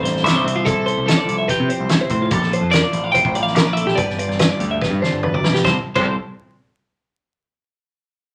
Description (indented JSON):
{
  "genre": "math rock and midwest emo",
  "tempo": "144 BPM",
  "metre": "4/4",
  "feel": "straight",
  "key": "C major",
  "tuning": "A4 = 439 Hz",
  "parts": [
    { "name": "twelve-string electric guitar", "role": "melody", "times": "0.0-6.1 s", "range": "G4 to G5", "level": "-24 LUFS", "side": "equal", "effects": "none" },
    { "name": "twelve-string electric guitar", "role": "accompaniment", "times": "0.0-6.2 s", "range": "G2 to C5", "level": "-27 LUFS", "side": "equal", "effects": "none" },
    { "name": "twelve-string electric guitar", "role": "arpeggios", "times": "0.0-6.2 s", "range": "F4 to F5", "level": "-25 LUFS", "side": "equal", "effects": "none" },
    { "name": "growling picked electric bass", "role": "bass", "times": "0.0-6.2 s", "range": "G1 to C3", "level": "-25 LUFS", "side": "equal", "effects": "overdrive" },
    { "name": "loose indie drum kit", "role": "drums", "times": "0.1-6.1 s", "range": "crash cymbal, hi-hat, kick drum, snare drum, toms", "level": "-23 LUFS", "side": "equal", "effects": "none" }
  ],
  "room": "moderate club reverb, RT60 0.6 s",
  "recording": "vinyl crackle",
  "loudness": "-18 LUFS",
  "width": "mono",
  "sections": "0.0-5.6 A section; 5.6-7.3 B section",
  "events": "drum fill 4.8-5.6",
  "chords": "0.4 Fmaj9/C; 2.3 Bbmaj7; 4.0 G7; 5.6 C6"
}